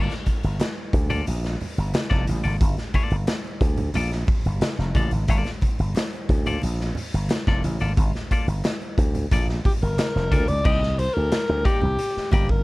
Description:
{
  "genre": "funk",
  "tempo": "90 BPM",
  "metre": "4/4",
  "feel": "straight",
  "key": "G minor",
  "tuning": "A4 = 440 Hz",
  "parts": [
    { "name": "clean electric guitar", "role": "accompaniment", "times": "0.0-12.5 s", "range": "Bb3 to D5", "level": "-28 LUFS", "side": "left 4 dB", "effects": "none" },
    { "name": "slap bass with an envelope filter", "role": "bass", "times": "0.0-12.6 s", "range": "F1 to D2", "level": "-24 LUFS", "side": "equal", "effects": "none" },
    { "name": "raw garage drum kit", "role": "drums", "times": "0.1-12.6 s", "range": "crash cymbal, hi-hat, kick drum, snare drum", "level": "-23 LUFS", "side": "equal", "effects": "none" },
    { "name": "congas", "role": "percussion", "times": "0.3-12.5 s", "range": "none", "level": "-32 LUFS", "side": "right 2 dB", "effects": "none" },
    { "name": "group handclap", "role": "percussion", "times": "0.6-11.5 s", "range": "none", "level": "-41 LUFS", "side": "left 4 dB", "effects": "none" },
    { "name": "breathy alto saxophone", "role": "melody", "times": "9.7-12.6 s", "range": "G4 to Eb5", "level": "-25 LUFS", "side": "left 1 dB", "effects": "none" }
  ],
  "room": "little or no reverb",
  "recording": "dark, warm production",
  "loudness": "-20 LUFS",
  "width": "side -21 dB against mid",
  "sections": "0.0-10.7 A section; 10.7-12.6 B section",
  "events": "none",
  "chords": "0.0 Gm9; 10.7 Cm9"
}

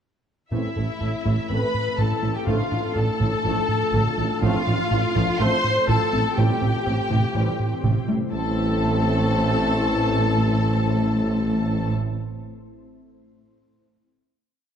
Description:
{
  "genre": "cinematic, hybrid orchestral and electronic film score",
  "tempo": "123 BPM",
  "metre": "4/4",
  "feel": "straight",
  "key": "A minor",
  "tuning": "A4 = 440 Hz",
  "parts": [
    { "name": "warm symphonic violin section", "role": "melody", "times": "0.5-11.9 s", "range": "E5 to C6", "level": "-29 LUFS", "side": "left 3 dB", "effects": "none" },
    { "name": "warm symphonic violin section", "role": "second line", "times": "0.5-11.9 s", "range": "E4 to C5", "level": "-30 LUFS", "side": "left 2 dB", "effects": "none" },
    { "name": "warm symphonic viola section", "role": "accompaniment", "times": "0.5-11.9 s", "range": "E4 to C5", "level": "-31 LUFS", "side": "left 1 dB", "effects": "none" },
    { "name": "clear trombone section", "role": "sustained chords", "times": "0.5-11.9 s", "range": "E3 to A3", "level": "-33 LUFS", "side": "right 3 dB", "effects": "none" },
    { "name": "dark French horn section", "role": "sustained chords", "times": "0.5-11.9 s", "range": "C4 to C5", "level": "-33 LUFS", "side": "left 4 dB", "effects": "none" },
    { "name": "glassy FM pad", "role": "sustained chords", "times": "1.5-11.9 s", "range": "G3 to C5", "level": "-31 LUFS", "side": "left 2 dB", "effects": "ensemble chorus, built-in reverb" },
    { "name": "tight sequenced synth", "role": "arpeggios", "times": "0.5-8.2 s", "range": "C3 to A4", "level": "-32 LUFS", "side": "left 1 dB", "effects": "chorus, phaser" },
    { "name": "rubbery square bass", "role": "riff", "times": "0.5-8.2 s", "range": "A2 to A3", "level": "-26 LUFS", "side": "right 2 dB", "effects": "none" },
    { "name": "mellow tuba", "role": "bass", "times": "0.5-11.9 s", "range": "A1", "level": "-29 LUFS", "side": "right 2 dB", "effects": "none" },
    { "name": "warm symphonic cello section", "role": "bass", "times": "0.5-11.9 s", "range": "A2", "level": "-28 LUFS", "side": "equal", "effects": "none" },
    { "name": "warm symphonic double bass section", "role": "bass", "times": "0.5-11.9 s", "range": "A1", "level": "-28 LUFS", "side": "right 3 dB", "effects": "none" }
  ],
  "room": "moderate scoring stage reverb, RT60 1.8 s",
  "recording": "dark, warm production",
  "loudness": "-20 LUFS",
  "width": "side -8 dB against mid",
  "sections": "0.5-8.3 theme; 8.3-12.2 final chord",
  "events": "none",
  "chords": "0.5 Am; 2.5 Dm/A; 4.4 F/A; 6.4 C/A; 8.3 Am"
}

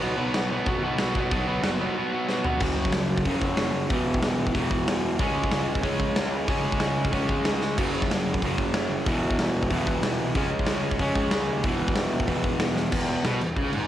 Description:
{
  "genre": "punk rock",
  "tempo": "186 BPM",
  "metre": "4/4",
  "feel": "straight",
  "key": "E major",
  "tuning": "A4 = 440 Hz",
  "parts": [
    { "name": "overdriven semi-hollow guitar", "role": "riff", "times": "0.0-13.9 s", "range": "E2 to C#4", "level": "-25 LUFS", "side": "equal", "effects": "cassette tape" },
    { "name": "fuzz picked electric bass", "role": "bass", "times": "0.0-13.9 s", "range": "E1 to D#2", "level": "-32 LUFS", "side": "equal", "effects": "overdrive" },
    { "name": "big rock drum kit", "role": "drums", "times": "0.0-13.8 s", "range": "crash cymbal, hi-hat, kick drum, snare drum, toms", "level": "-27 LUFS", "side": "equal", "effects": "none" }
  ],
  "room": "little or no reverb",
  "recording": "home recording on cassette",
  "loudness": "-23 LUFS",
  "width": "side -12 dB against mid",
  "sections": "0.0-2.6 A section; 2.6-12.9 B section",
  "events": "drum fill 2.3-2.6, 7.6, 12.8",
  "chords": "0.0 B5; 2.6 F#5; 3.9 E5; 5.2 C#5; 7.8 F#5; 9.1 E5; 10.4 C#5; 11.6 E5; 12.9 E"
}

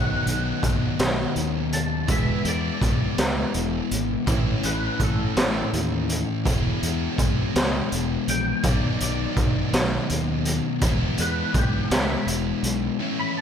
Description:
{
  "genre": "quiet-loud alternative rock",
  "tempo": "55 BPM (dotted quarters)",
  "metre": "6/8",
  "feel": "straight",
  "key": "E major",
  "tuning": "A4 = 439 Hz",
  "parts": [
    { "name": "twangy electric guitar", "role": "melody", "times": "0.0-13.4 s", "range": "E4 to B5", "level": "-31 LUFS", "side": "equal", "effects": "ensemble chorus" },
    { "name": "fingerpicked steel-string acoustic guitar", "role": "arpeggios", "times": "0.0-6.4 s", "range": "A2 to B3", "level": "-34 LUFS", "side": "right 4 dB", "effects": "tape echo" },
    { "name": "overdriven electric guitar", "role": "riff", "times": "0.0-13.4 s", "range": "A2 to E4", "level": "-28 LUFS", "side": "left 11 dB", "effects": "spring reverb" },
    { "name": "sludgy distorted guitar", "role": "riff", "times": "0.0-13.4 s", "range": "A2 to E4", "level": "-30 LUFS", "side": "right 11 dB", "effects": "overdrive" },
    { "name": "fuzz fingered electric bass", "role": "bass", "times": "0.0-12.9 s", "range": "E1 to E2", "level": "-29 LUFS", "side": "equal", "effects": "overdrive" },
    { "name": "raw garage drum kit", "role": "drums", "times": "0.3-12.8 s", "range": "hi-hat, kick drum, snare drum", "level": "-24 LUFS", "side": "equal", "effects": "none" }
  ],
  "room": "moderate concert hall reverb, RT60 1.9 s, studio ambience",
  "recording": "big arena sound",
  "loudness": "-21 LUFS",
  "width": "side -8 dB against mid",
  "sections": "0.0-13.4 A section",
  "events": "clean electric guitar solo 0.0-13.4",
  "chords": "0.0 B; 2.1 E; 4.3 A; 6.5 E; 8.6 B; 10.8 E"
}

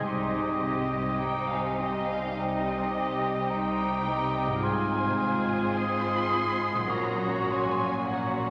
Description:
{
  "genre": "classical, slow romantic movement for symphony orchestra",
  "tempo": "52 BPM",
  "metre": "4/4",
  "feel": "rubato",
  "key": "F minor from 4.6 s",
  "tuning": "A4 = 440 Hz",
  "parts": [
    { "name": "muted chamber violin section", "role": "melody", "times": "0.0-8.5 s", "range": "Eb5 to C6", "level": "-38 LUFS", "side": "equal", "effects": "none" },
    { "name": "clear clarinet", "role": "second line", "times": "0.0-8.5 s", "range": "Gb4 to Ab4", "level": "-39 LUFS", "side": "equal", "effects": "none" },
    { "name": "mellow hollow concert flute", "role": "second line", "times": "0.0-8.5 s", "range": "G5 to Eb6", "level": "-35 LUFS", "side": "equal", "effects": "none" },
    { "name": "muted chamber violin section", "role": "second line", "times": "0.0-8.5 s", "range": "Eb4 to Eb5", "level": "-38 LUFS", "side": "equal", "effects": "none" },
    { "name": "warm oboe", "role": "second line", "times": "0.0-8.5 s", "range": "Db5 to F5", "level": "-37 LUFS", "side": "equal", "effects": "none" },
    { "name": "muted chamber viola section", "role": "accompaniment", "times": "0.0-8.5 s", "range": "G3 to F4", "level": "-39 LUFS", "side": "equal", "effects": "none" },
    { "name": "mellow French horn section", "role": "sustained chords", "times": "0.0-8.5 s", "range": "Gb3 to F4", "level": "-38 LUFS", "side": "equal", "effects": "none" },
    { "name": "concert harp", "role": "arpeggios", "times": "0.0-8.5 s", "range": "Ab2 to C5", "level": "-38 LUFS", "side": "equal", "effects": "none" },
    { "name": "muted chamber cello section", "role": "bass", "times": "0.0-8.5 s", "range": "Ab2 to C3", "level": "-37 LUFS", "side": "equal", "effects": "none" },
    { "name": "muted studio double bass section", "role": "bass", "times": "0.0-8.5 s", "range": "Ab1 to C2", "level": "-43 LUFS", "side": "equal", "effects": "none" }
  ],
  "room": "wet cathedral reverb, RT60 4.8 s",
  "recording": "none",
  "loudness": "-28 LUFS",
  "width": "mono",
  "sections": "0.0-8.5 A section",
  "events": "none",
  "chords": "0.0 Cm; 4.6 Fm/Ab; 6.9 Gb/Bb"
}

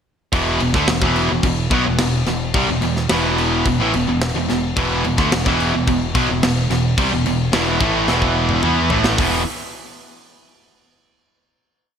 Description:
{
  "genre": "heavy metal",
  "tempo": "108 BPM",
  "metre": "4/4",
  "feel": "straight",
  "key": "unclear",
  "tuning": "A4 = 439 Hz",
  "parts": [
    { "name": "distorted electric guitar", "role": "riff", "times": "0.3-9.4 s", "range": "E2 to E4", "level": "-22 LUFS", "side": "left 9 dB", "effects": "overdrive" },
    { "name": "overdriven electric guitar", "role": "riff", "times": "0.3-9.4 s", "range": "E2 to E4", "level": "-24 LUFS", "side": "equal", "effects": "none" },
    { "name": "tight distorted guitar", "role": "riff", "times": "0.3-9.4 s", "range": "E2 to E4", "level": "-21 LUFS", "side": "right 8 dB", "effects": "distortion" },
    { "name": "growling picked electric bass", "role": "bass", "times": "0.3-9.4 s", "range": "E1 to E2", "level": "-24 LUFS", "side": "equal", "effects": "overdrive" },
    { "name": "tight metal drum kit", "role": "drums", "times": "0.3-9.3 s", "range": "crash cymbal, hi-hat, kick drum, snare drum, toms", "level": "-22 LUFS", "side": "equal", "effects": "gated reverb" }
  ],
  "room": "moderate lush hall reverb, RT60 2.3 s",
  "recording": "bright 1980s-style digital production",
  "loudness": "-15 LUFS",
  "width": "side -7 dB against mid",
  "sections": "0.3-9.2 riff; 9.2-11.4 final chord",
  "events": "drum fill 8.1-9.2",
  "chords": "0.3 E5"
}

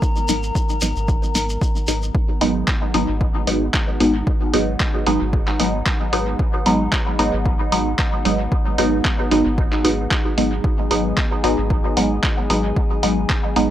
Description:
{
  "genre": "dub techno",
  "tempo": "113 BPM",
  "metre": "4/4",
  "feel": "swing 54% on 16ths",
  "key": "G# minor",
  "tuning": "A4 = 436 Hz",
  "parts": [
    { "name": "warbly tape-like pad", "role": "sustained chords", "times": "0.0-13.7 s", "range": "B3 to A#5", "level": "-29 LUFS", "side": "left 3 dB", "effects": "chorus, built-in reverb, sidechain pumping" },
    { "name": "filtered dub chord stab", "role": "stabs", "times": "0.0-13.7 s", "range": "F#3 to D#4", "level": "-20 LUFS", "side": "equal", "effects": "phaser, sidechain pumping, dub echo" },
    { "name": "electronic kick drum", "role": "drums", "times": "0.0-13.4 s", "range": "none", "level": "-21 LUFS", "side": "equal", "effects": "none" },
    { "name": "shekere", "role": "percussion", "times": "0.0-2.1 s", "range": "none", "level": "-29 LUFS", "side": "left 2 dB", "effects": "none" },
    { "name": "soft dub sub bass", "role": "bass", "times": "0.3-13.7 s", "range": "G#1", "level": "-25 LUFS", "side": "equal", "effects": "tube saturation, sidechain pumping" },
    { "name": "lo-fi sampler-style drum kit", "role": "drums", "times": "0.3-13.7 s", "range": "handclaps, hi-hat", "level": "-24 LUFS", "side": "equal", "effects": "dub echo" }
  ],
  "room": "light reverb",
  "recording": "dry, gritty hardware recording",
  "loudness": "-17 LUFS",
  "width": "side -12 dB against mid",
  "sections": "0.0-2.1 A section; 2.1-13.7 A section",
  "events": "none",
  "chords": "0.0 G#m7"
}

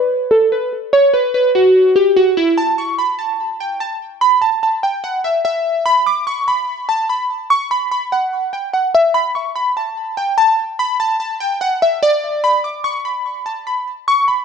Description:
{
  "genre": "hip hop",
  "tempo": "146 BPM",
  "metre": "4/4",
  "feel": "half-time",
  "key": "B minor",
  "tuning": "A4 = 445 Hz",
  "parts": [
    { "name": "glassy digital keys", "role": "solo", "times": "0.0-14.4 s", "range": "E4 to D6", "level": "-14 LUFS", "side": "equal", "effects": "chorus, low-pass filter, ping-pong delay" }
  ],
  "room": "light reverb",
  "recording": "none",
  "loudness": "-14 LUFS",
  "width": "side -6 dB against mid",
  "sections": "0.0-2.6 A section; 2.6-14.4 B section",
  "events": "filter sweep on synth keys 0.0-2.6",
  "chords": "none"
}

